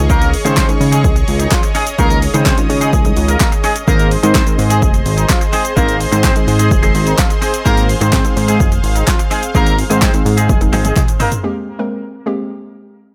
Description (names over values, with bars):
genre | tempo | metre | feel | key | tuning
dance-pop | 127 BPM | 4/4 | straight | Ab major | A4 = 445 Hz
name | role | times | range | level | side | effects
hollow square pluck | accompaniment | 0.0-13.0 s | Eb3 to Bb4 | -23 LUFS | equal | chorus, sidechain pumping
soft supersaw | sustained chords | 0.0-11.4 s | Ab4 to Eb6 | -25 LUFS | equal | sidechain pumping
twelve-string electric guitar | riff | 0.0-11.4 s | C4 to Ab4 | -25 LUFS | equal | lush chorus
chorused synth bass | bass | 0.0-10.9 s | F1 to Db3 | -18 LUFS | equal | sidechain pumping
warm horn section | melody | 0.1-11.3 s | Eb3 to C5 | -22 LUFS | equal | dub echo
deep house drum kit | drums | 0.1-11.4 s | handclaps, hi-hat, kick drum, shaker, snare drum, toms | -17 LUFS | equal | none
group handclap | percussion | 0.6-11.1 s | none | -30 LUFS | equal | none
room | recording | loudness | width
little or no reverb | none | -14 LUFS | mono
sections
0.0-11.4 A section; 11.4-13.1 B section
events
drop 0.0-11.4; drum fill 10.5-11.4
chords
0.0 Dbsus2; 3.9 Ab; 11.4 Abmaj9